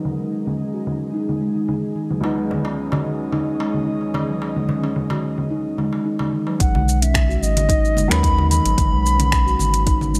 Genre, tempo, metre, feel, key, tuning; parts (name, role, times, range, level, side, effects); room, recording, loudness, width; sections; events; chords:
organic downtempo; 110 BPM; 4/4; swing 53% on 16ths; G# minor; A4 = 440 Hz
felt-muted upright piano; accompaniment; 0.0-10.2 s; C#2 to D#4; -33 LUFS; equal; sidechain pumping, low-pass filter, delay
airy breathy pad; sustained chords; 0.0-6.6 s; G#3 to D#5; -33 LUFS; equal; chorus, sidechain pumping
steel tongue drum; arpeggios; 0.0-10.2 s; D#3 to F#4; -26 LUFS; equal; low-pass filter, delay
deep house drum kit; drums; 0.1-10.2 s; congas, finger snaps, hi-hat, shaker; -28 LUFS; equal; overdrive, low-pass filter on perc, low-pass filter on snare, low-pass filter on toms, low-pass filter on cymbals, low-pass filter on hats
darbuka; percussion; 2.2-6.6 s; -31 LUFS; equal
bansuri; melody; 6.6-10.2 s; D#5 to B5; -24 LUFS; equal; delay
warm sub bass; bass; 6.6-10.2 s; F#1 to D#2; -22 LUFS; equal; sidechain pumping
electronic kick drum; drums; 6.6-10.0 s; -22 LUFS; equal; overdrive
light reverb, small room reverb; -20 LUFS; mono
0.0-6.6 A section; 6.6-10.2 B section
filter sweep on felt piano 0.0-6.6; filter sweep on analog synth pad 0.0-6.6
0.0 G#m11; 2.2 C#5; 6.6 G#m11